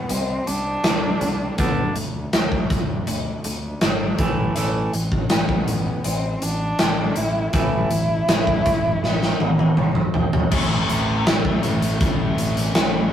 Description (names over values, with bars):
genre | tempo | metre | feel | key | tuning
quiet-loud alternative rock | 81 BPM | 4/4 | straight | unclear | A4 = 440 Hz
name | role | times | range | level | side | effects
dark cello | melody | 0.0-9.7 s | A3 to E4 | -26 LUFS | equal | none
twangy electric guitar | arpeggios | 0.0-10.5 s | A2 to D4 | -29 LUFS | right 2 dB | none
fuzz fingered electric bass | bass | 0.1-13.1 s | G#1 to D2 | -27 LUFS | equal | overdrive
big rock drum kit | drums | 0.1-12.9 s | crash cymbal, hi-hat, kick drum, snare drum, toms | -20 LUFS | equal | none
high-gain distorted guitar | riff | 10.5-13.1 s | A2 to A3 | -27 LUFS | left 4 dB | distortion
thick fuzz guitar | riff | 10.5-13.1 s | A2 to E4 | -27 LUFS | right 3 dB | distortion
room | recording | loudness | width
moderate small room reverb, RT60 0.5 s | rough rehearsal-room recording | -18 LUFS | side -10 dB against mid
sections
0.0-10.5 A section; 10.5-13.1 B section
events
drum fill 9.0-10.5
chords
0.0 Csus2; 1.6 D5; 4.2 A5; 10.5 Am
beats
0.10 0.85 | 1.59 2.34 3.08 3.83 | 4.57 5.32 6.06 6.80 | 7.55 8.29 9.04 9.78 | 10.53 11.27 12.02 12.76